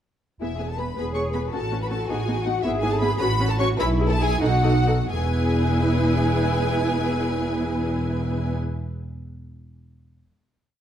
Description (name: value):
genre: quick classical-period movement for string orchestra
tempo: 85-110 BPM (dotted quarters)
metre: 6/8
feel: rubato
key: E major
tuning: A4 = 440 Hz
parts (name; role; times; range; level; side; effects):
- rich studio violin section; melody; 0.4-8.5 s; E5 to C#6; -29 LUFS; left 1 dB; none
- rich studio violin section; second line; 0.4-8.6 s; E4 to C#5; -30 LUFS; left 4 dB; none
- rich studio viola section; accompaniment; 0.4-8.6 s; B3 to B4; -27 LUFS; equal; none
- rich studio double bass section; bass; 0.4-8.5 s; E1 to B1; -24 LUFS; right 1 dB; none
- rich symphonic cello section; bass; 1.0-8.6 s; E2 to G#4; -28 LUFS; right 1 dB; none
room: moderate recital hall reverb, RT60 1.5 s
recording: dark, warm production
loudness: -20 LUFS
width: side -10 dB against mid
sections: 0.4-5.1 A section; 5.1-7.8 final chord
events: slowing down 2.1-5.1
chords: 0.4 E; 1.5 F#m/A; 2.1 B7/A; 2.6 E/G#; 3.2 F#m/A; 3.8 E/B; 4.4 B7; 5.1 E